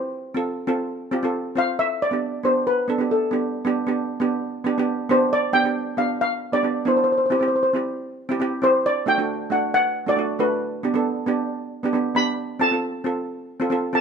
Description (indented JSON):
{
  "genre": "calypso",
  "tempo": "136 BPM",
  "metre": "4/4",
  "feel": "straight",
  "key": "unclear",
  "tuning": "A4 = 440 Hz",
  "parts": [
    { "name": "steel pan", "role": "accompaniment", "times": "0.0-14.0 s", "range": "A3 to C5", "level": "-23 LUFS", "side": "right 3 dB", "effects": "none" },
    { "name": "steel pan", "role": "melody", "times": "1.6-14.0 s", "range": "A4 to B5", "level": "-20 LUFS", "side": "left 1 dB", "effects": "none" }
  ],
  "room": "moderate spring reverb, RT60 1.3 s",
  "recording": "minimal, uncompressed stereo recording",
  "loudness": "-20 LUFS",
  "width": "side -6 dB against mid",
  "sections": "0.0-3.6 A section; 3.6-5.3 B section; 5.3-14.0 C section",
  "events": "steel pan solo 0.0-3.6",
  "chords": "0.0 F; 1.8 G; 7.1 C; 8.9 D; 10.6 G; 12.4 F"
}